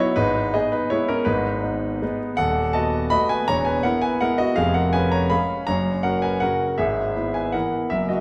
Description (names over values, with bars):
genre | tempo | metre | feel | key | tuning
classical, piano waltz | 163 BPM | 3/4 | rubato | unclear | A4 = 441 Hz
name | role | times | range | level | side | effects
clear concert grand piano | solo | 0.0-8.2 s | D#1 to B5 | -22 LUFS | equal | none
room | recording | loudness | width
wet recital hall reverb, RT60 1.7 s | heard from further back in the room | -22 LUFS | mono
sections
0.0-8.2 A section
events
none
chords
0.2 G#m; 2.4 B7/D#; 3.5 E; 4.6 C#7/E#; 5.7 F#; 6.8 E/G#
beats
| 0.17 0.54 0.91 | 1.28 1.64 2.02 | 2.38 2.74 3.11 | 3.47 3.83 4.20 | 4.57 4.93 5.31 | 5.67 6.04 6.42 | 6.79 7.16 7.55 | 7.92